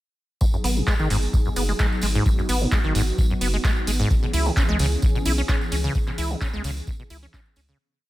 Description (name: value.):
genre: acid house.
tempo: 130 BPM.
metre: 4/4.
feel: swing 53% on 16ths.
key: G# minor.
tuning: A4 = 442 Hz.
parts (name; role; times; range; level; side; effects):
warm analog pad; sustained chords; 0.4-7.8 s; E3 to G#4; -30 LUFS; equal; chorus, sidechain pumping.
acid bass, saw; riff; 0.4-7.8 s; G#1 to E4; -27 LUFS; equal; wide subtle chorus, sidechain pumping, digital delay.
electronic kick drum; drums; 0.4-7.4 s; none; -22 LUFS; equal; none.
tambourine; percussion; 0.4-7.8 s; none; -36 LUFS; right 2 dB; none.
round analog bass; bass; 0.6-7.7 s; F#1 to C#2; -24 LUFS; equal; sidechain pumping.
booming analog drum machine; drums; 0.6-7.7 s; handclaps, hi-hat; -29 LUFS; right 1 dB; none.
room: little or no reverb.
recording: none.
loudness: -20 LUFS.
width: side -16 dB against mid.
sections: 0.4-7.8 groove.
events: fade-out 5.3-7.8.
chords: 0.4 G#m7; 4.1 C#m7.